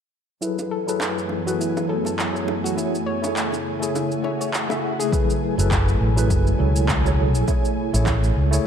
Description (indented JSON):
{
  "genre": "sunset chillout",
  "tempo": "102 BPM",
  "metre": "4/4",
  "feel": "swing 56% on 16ths",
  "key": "F# minor",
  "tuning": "A4 = 442 Hz",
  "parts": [
    { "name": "tine electric piano", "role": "accompaniment", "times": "0.4-8.7 s", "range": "F#3 to E5", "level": "-25 LUFS", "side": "moving between left 6 dB and right 5 dB", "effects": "overdrive, medium stereo tremolo, auto-pan, low-pass filter, tape echo" },
    { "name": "ethereal airy pad", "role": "sustained chords", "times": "0.7-8.7 s", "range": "F#2 to G#5", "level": "-28 LUFS", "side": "equal", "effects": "ensemble chorus, built-in reverb" },
    { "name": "soft round pluck", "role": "arpeggios", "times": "0.4-5.1 s", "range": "E4 to C#5", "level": "-29 LUFS", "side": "left 4 dB", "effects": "chorus, cassette tape, tape echo" },
    { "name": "electronic cabasa and handclaps", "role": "drums", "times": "0.4-8.6 s", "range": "none", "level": "-29 LUFS", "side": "right 1 dB", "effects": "overdrive, studio ambience" },
    { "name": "bongos", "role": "percussion", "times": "0.6-5.1 s", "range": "none", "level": "-35 LUFS", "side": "right 1 dB", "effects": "none" },
    { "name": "swell", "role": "sound effects", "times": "4.1-5.1 s", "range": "none", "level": "-34 LUFS", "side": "right 4 dB", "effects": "none" },
    { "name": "electronic kick drum", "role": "drums", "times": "5.1-8.2 s", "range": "none", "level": "-23 LUFS", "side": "equal", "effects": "overdrive, studio ambience" },
    { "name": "fretless electric bass", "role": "bass", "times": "5.6-8.6 s", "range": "F#1 to C#2", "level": "-19 LUFS", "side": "equal", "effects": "wide subtle chorus" }
  ],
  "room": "light reverb",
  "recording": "dark, warm production",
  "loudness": "-19 LUFS",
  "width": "side -8 dB against mid",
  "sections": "0.4-5.1 A section; 5.1-8.7 B section",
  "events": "filter sweep on tine electric piano 0.4-5.1; filter sweep on synth pluck 0.4-5.1; swell 4.1-5.1",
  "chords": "0.4 F#m11; 2.8 Amaj7; 5.1 F#m11; 7.5 Amaj7",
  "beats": "| 0.42 1.01 1.60 2.19 | 2.77 3.36 3.95 4.54 | 5.13 5.71 6.30 6.89 | 7.48 8.07 8.66"
}